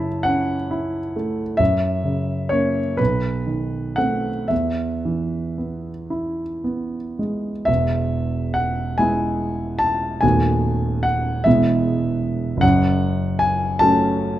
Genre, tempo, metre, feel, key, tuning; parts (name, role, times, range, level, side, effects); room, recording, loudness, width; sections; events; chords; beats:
classical, romantic nocturne for solo piano; 36-54 BPM (dotted quarters); 12/8; rubato; E major; A4 = 440 Hz
warm concert grand piano; solo; 0.0-14.4 s; D#1 to B5; -18 LUFS; equal
light reverb; close, detailed microphones; -18 LUFS; side -13 dB against mid
0.0-7.7 A section; 7.7-14.4 B section
0.0 F#m7; 1.6 F#7; 3.0 B7b9; 4.5 E; 10.2 B7/D#; 11.5 E; 12.6 F#m
0.26 | 1.60 2.99 4.51 6.11 | 7.68 8.98 10.23 11.46 | 12.63 13.80